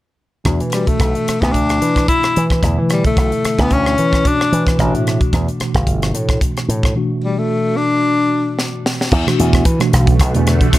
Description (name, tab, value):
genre	electric jazz fusion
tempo	111 BPM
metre	4/4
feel	swing 54% on 16ths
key	unclear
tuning	A4 = 440 Hz
part	mellow tine electric piano	accompaniment	0.4-10.7 s	B2 to F#4	-20 LUFS	right 1 dB	medium stereo tremolo, phaser
part	slap bass with an envelope filter	bass	0.5-10.6 s	G1 to E3	-17 LUFS	equal	none
part	crisp fusion drum kit	drums	0.5-10.8 s	crash cymbal, hi-hat, kick drum, rim click, snare drum	-18 LUFS	equal	none
part	warm tenor saxophone	melody	0.7-8.6 s	G3 to E4	-17 LUFS	left 3 dB	plate reverb, tape echo
part	shimmering ambient pad	sustained chords	10.1-10.8 s	D3 to F#4	-24 LUFS	equal	chorus, built-in reverb, phaser
room	light reverb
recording	none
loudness	-13 LUFS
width	side -16 dB against mid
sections	0.5-9.1 A section; 9.1-10.8 B section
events	drum fill 8.6-9.1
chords	0.5 E5; 4.8 Asus4; 9.1 Em11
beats	| 0.46 1.00 1.54 2.08 | 2.63 3.17 3.71 4.25 | 4.79 5.33 5.88 6.42 | 6.96 7.50 8.04 8.58 | 9.12 9.65 10.19 10.73